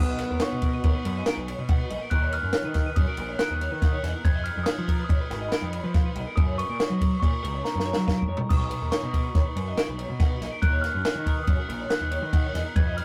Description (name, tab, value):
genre	math rock and midwest emo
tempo	141 BPM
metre	5/4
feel	straight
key	unclear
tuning	A4 = 441 Hz
part	glockenspiel with rubber mallets	melody	0.0-13.0 s	A#5 to G#6	-35 LUFS	equal	none
part	electric guitar through a small old amp	accompaniment	0.0-2.1 s	B3	-35 LUFS	equal	spring reverb
part	twelve-string electric guitar	arpeggios	0.0-13.0 s	A#4 to F#5	-39 LUFS	equal	none
part	fuzz picked electric bass	bass	0.0-13.0 s	G#1 to F#3	-33 LUFS	equal	overdrive
part	compact cocktail drum kit	drums	0.2-13.0 s	crash cymbal, kick drum, ride cymbal, snare drum, toms	-27 LUFS	equal	none
room	moderate booth ambience, RT60 0.2 s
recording	rough rehearsal-room recording, tube saturation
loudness	-26 LUFS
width	mono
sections	0.0-13.0 A section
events	drum fill 7.7-8.5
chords	0.0 Bmaj7; 2.1 D#m7; 4.2 C#9/E#; 6.4 F#; 8.5 Bmaj7; 10.6 D#m7